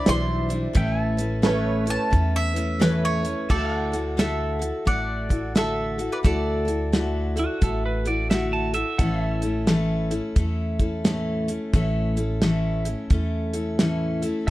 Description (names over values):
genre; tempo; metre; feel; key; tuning
honky-tonk and classic country; 87 BPM; 4/4; swing 63% on 8ths; D major; A4 = 438 Hz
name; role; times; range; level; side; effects
mandolin; melody; 0.0-7.6 s; A4 to C6; -28 LUFS; equal; none
picked steel-string acoustic guitar; accompaniment; 0.0-14.5 s; A2 to C5; -25 LUFS; left 1 dB; none
pedal steel guitar; sustained chords; 0.0-14.5 s; E5 to A5; -35 LUFS; right 1 dB; none
honky-tonk upright piano; accompaniment; 0.1-3.5 s; E4 to D5; -29 LUFS; right 5 dB; none
upright bass; bass; 0.1-14.5 s; A1 to E2; -27 LUFS; equal; none
damped 70s drum kit; drums; 0.1-14.5 s; crash cymbal, hi-hat, kick drum, snare drum; -22 LUFS; equal; none
clean electric guitar; second line; 7.4-10.8 s; F#4 to A5; -28 LUFS; right 4 dB; tape echo
room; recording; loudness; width
light reverb; dark, warm production; -21 LUFS; side -17 dB against mid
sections
0.0-3.5 A section; 3.5-14.5 B section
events
mandolin solo 0.0-3.5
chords
0.0 Cadd9; 0.8 Aadd9; 3.5 Dadd9; 9.0 A